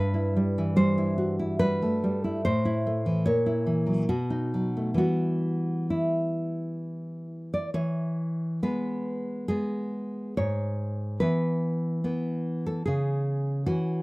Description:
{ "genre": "romantic piece for solo classical guitar", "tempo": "64-77 BPM", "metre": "3/4", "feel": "rubato", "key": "E minor, E major from 7.8 s", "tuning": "A4 = 440 Hz", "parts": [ { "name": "nylon-string guitar", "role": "solo", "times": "0.0-14.0 s", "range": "G2 to D5", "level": "-25 LUFS", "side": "equal", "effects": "none" } ], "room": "light reverb", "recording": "rough home demo mix", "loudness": "-25 LUFS", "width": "side -22 dB against mid", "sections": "0.0-7.8 A section; 7.8-14.0 B section", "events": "none", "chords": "0.0 Em/G; 2.5 Am; 3.3 F#7/A#; 4.1 B7; 5.0 Em; 7.8 E; 10.4 E/G#; 12.8 C#m" }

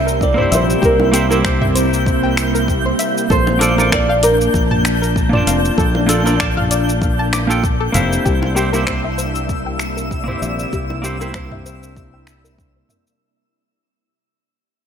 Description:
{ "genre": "sunset chillout", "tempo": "97 BPM", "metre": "4/4", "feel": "swing 55% on 16ths", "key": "unclear", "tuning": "A4 = 439 Hz", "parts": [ { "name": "flamenco guitar", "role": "melody", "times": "0.0-7.6 s", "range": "Bb4 to E5", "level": "-19 LUFS", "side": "right 1 dB", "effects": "ping-pong delay, shimmer reverb" }, { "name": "soft string machine", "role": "sustained chords", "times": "0.0-13.2 s", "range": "C3 to A5", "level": "-22 LUFS", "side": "right 1 dB", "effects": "phaser, ensemble chorus, shimmer reverb" }, { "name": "fingered electric bass", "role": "bass", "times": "0.0-12.8 s", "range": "F1 to C2", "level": "-20 LUFS", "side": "equal", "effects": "none" }, { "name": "twinkling granular texture", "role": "texture", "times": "0.0-13.2 s", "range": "E6 to G6", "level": "-27 LUFS", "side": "left 1 dB", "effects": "built-in reverb, shimmer reverb" }, { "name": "soft round pluck", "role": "arpeggios", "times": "0.1-13.0 s", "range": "G4 to D6", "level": "-24 LUFS", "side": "left 3 dB", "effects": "chorus, ping-pong delay, shimmer reverb" }, { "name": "deep house drum kit", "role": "drums", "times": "0.1-13.2 s", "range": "finger snaps, hi-hat, shaker, toms", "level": "-23 LUFS", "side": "equal", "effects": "none" }, { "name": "electronic kick drum", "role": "drums", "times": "0.2-12.7 s", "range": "none", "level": "-20 LUFS", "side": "equal", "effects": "none" }, { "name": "semi-hollow electric guitar", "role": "accompaniment", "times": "0.3-13.2 s", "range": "Bb3 to A5", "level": "-21 LUFS", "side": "moving between left 5 dB and right 3 dB", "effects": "auto-pan, low-pass filter, ping-pong delay, shimmer reverb" }, { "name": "bongos", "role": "percussion", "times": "1.0-11.3 s", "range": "none", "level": "-28 LUFS", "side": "right 1 dB", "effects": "none" } ], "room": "light reverb, digital ambience", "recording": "none", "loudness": "-14 LUFS", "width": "side -8 dB against mid", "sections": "0.0-8.3 A section; 8.3-13.2 B section", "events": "fade-out 8.3-13.2; filter sweep on fingered electric bass 8.3-13.2; filter sweep on clean electric guitar 8.3-13.2", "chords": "0.0 C7; 3.3 Bbmaj7; 8.3 C7" }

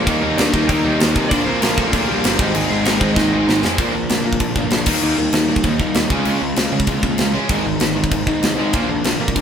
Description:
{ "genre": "punk rock", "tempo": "194 BPM", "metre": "4/4", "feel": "straight", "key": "Bb major", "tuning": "A4 = 438 Hz", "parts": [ { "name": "lightly driven lead guitar", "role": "melody", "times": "0.0-3.6 s", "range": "G3 to G5", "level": "-22 LUFS", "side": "equal", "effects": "none" }, { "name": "crunchy overdriven guitar", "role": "riff", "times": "0.0-9.4 s", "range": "Ab2 to F4", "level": "-21 LUFS", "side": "left 1 dB", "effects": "none" }, { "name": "distorted electric guitar", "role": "riff", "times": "0.0-9.4 s", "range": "Ab2 to Eb4", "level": "-24 LUFS", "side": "right 10 dB", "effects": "overdrive" }, { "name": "tight distorted guitar", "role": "riff", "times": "0.0-9.4 s", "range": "Ab2 to Eb4", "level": "-24 LUFS", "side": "left 8 dB", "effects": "distortion" }, { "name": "fuzz picked electric bass", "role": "bass", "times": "0.0-9.4 s", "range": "G1 to Db3", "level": "-24 LUFS", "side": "equal", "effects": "overdrive" }, { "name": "tight metal drum kit", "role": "drums", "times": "0.1-9.4 s", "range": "crash cymbal, kick drum, snare drum", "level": "-19 LUFS", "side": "equal", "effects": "none" } ], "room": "light reverb", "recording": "band playing live in one room", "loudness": "-15 LUFS", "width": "side -8 dB against mid", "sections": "0.0-3.8 A section; 3.8-9.4 B section", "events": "drum fill 3.2-3.8", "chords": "0.1 Eb; 1.3 Bb; 2.4 Ab; 3.8 Bb; 4.9 Eb; 6.1 Db; 7.5 Ab; 8.7 Bb" }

